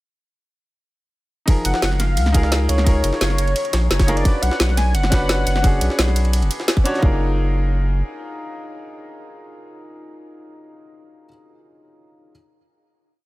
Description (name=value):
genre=liquid drum and bass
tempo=173 BPM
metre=4/4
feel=straight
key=F# major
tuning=A4 = 440 Hz
part: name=clear baby grand piano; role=accompaniment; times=1.5-12.3 s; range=E#3 to C#5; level=-26 LUFS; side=equal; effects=tape echo
part: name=drum and bass drum kit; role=drums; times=1.5-6.9 s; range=hi-hat, snare drum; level=-22 LUFS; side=equal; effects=none
part: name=electronic kick drum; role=drums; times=1.5-7.1 s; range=none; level=-16 LUFS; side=equal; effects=none
part: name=jungle sampler-style drum kit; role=drums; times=1.5-7.0 s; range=ride cymbal, snare drum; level=-28 LUFS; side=equal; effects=high-pass filter on cymbals, high-pass filter on snare
part: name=warm velvety synth lead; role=melody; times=1.6-6.6 s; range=C#5 to G#5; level=-26 LUFS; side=left 1 dB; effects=chorus, digital delay
part: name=saturated sub bass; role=bass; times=1.6-8.0 s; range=F#1 to C#2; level=-18 LUFS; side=equal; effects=none
room=digital ambience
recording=none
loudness=-16 LUFS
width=side -18 dB against mid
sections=1.5-7.0 drop; 7.0-9.8 final chord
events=drop 1.5-7.0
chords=1.5 F#maj13; 4.3 Bmadd9; 7.0 F#maj13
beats=| 1.48 1.82 2.17 2.52 | 2.86 3.21 3.56 3.90 | 4.25 4.60 4.95 5.29 | 5.64 5.99 6.33 6.68 | 7.03 7.37 7.72 8.07 | 8.41 8.76 9.11 9.45